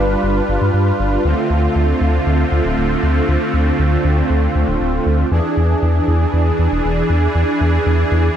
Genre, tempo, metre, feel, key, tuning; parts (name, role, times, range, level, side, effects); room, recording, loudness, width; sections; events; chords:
synthwave; 118 BPM; 4/4; straight; A4 = 440 Hz
soft supersaw; sustained chords; 0.0-8.4 s; D3 to B4; -17 LUFS; right 1 dB
round analog bass; bass; 0.0-8.3 s; D1 to G2; -16 LUFS; equal; tube saturation
light reverb, digital ambience; -14 LUFS; side -9 dB against mid
0.0-8.4 A section
0.0 G7; 1.2 Dm7; 5.3 E7